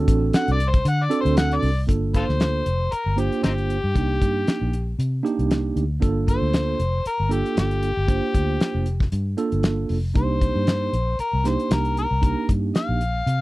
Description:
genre	straight-eighth soul blues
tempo	116 BPM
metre	4/4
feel	swing 55% on 16ths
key	G minor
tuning	A4 = 441 Hz
part	tine electric piano	accompaniment	0.0-13.0 s	Bb3 to C5	-25 LUFS	right 5 dB	medium tremolo
part	vintage muted fingered electric bass	bass	0.0-13.4 s	F1 to D3	-23 LUFS	equal	none
part	cloth-damped thuddy drum kit	drums	0.1-13.4 s	hi-hat, kick drum, snare drum	-21 LUFS	equal	none
part	overdriven harmonica	melody	0.4-13.4 s	C4 to F#5	-26 LUFS	left 2 dB	none
room	little or no reverb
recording	dry, close 1970s-style studio recording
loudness	-20 LUFS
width	side -18 dB against mid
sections	0.0-1.9 A section; 1.9-13.4 B section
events	harmonica solo 0.0-1.9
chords	0.0 D7; 1.9 Gm9; 3.9 Cm9; 6.0 Gm9; 10.2 Cm9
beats	0.33 0.85 1.36 | 1.88 2.40 2.91 3.43 | 3.95 4.46 4.98 5.50 | 6.01 6.53 7.05 7.57 | 8.08 8.60 9.12 9.63 | 10.15 10.67 11.19 11.70 | 12.22 12.74 13.26

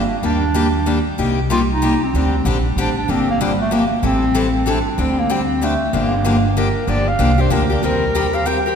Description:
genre	acoustic string swing (jazz manouche)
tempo	190 BPM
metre	3/4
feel	swing 61% on 8ths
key	G minor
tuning	A4 = 440 Hz
part	clear clarinet	melody	0.0-8.8 s	G3 to G5	-20 LUFS	right 1 dB	none
part	picked steel-string acoustic guitar	accompaniment	0.0-8.8 s	C3 to Bb4	-19 LUFS	left 2 dB	none
part	upright bass	bass	0.0-8.6 s	G1 to Eb2	-20 LUFS	equal	none
room	wet concert hall reverb, RT60 2.2 s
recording	recorded in a church or concert hall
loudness	-15 LUFS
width	side -7 dB against mid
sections	0.0-6.9 A section; 6.9-8.8 B section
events	none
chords	0.2 Ebmaj7; 1.2 Cm7; 2.1 D7sus4; 3.1 Gm7; 4.0 Am7; 5.0 D7sus4; 5.9 Gm7; 7.8 Eb6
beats	| 0.23 0.55 0.87 | 1.18 1.50 1.82 | 2.13 2.45 2.77 | 3.08 3.40 3.71 | 4.03 4.35 4.66 | 4.98 5.29 5.61 | 5.93 6.24 6.56 | 6.88 7.19 7.51 | 7.83 8.14 8.46

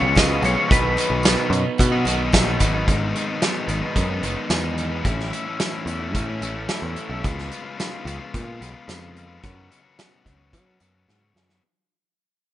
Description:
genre	indie rock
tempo	110 BPM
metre	4/4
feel	straight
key	unclear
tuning	A4 = 440 Hz
part	twelve-string electric guitar	melody	0.0-2.3 s	B4 to D#5	-24 LUFS	equal	analog chorus, tape echo
part	glockenspiel with rubber mallets	second line	0.0-2.3 s	B5 to D#6	-34 LUFS	right 2 dB	none
part	biting overdriven guitar	riff	0.0-11.6 s	F#2 to F#4	-27 LUFS	left 4 dB	none
part	crunchy overdriven guitar	riff	0.0-7.2 s	G#2 to A4	-31 LUFS	right 8 dB	lush chorus, tape echo
part	picked electric bass	bass	0.0-11.6 s	F#1 to F#3	-25 LUFS	equal	none
part	loose indie drum kit	drums	0.2-11.6 s	hi-hat, kick drum, snare drum, tambourine	-22 LUFS	right 1 dB	none
part	tambourine	percussion	0.2-2.7 s	none	barely audible	none	none
room	little or no reverb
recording	rough home demo mix, nothing above 10.3 kHz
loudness	-19 LUFS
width	side -13 dB against mid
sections	0.0-2.9 A section; 2.9-11.6 B section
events	fade-out 2.9-11.6; drum fill 11.1-11.6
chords	0.0 C#7; 0.7 B; 2.9 G#m7; 5.0 A; 7.2 C#7; 9.4 F#sus4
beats	0.16 | 0.70 1.24 1.78 2.33 | 2.87 3.41 3.96 4.50 | 5.05 5.59 6.14 6.69 | 7.23 7.78 8.33 8.88 | 9.42 9.97 10.52 11.07

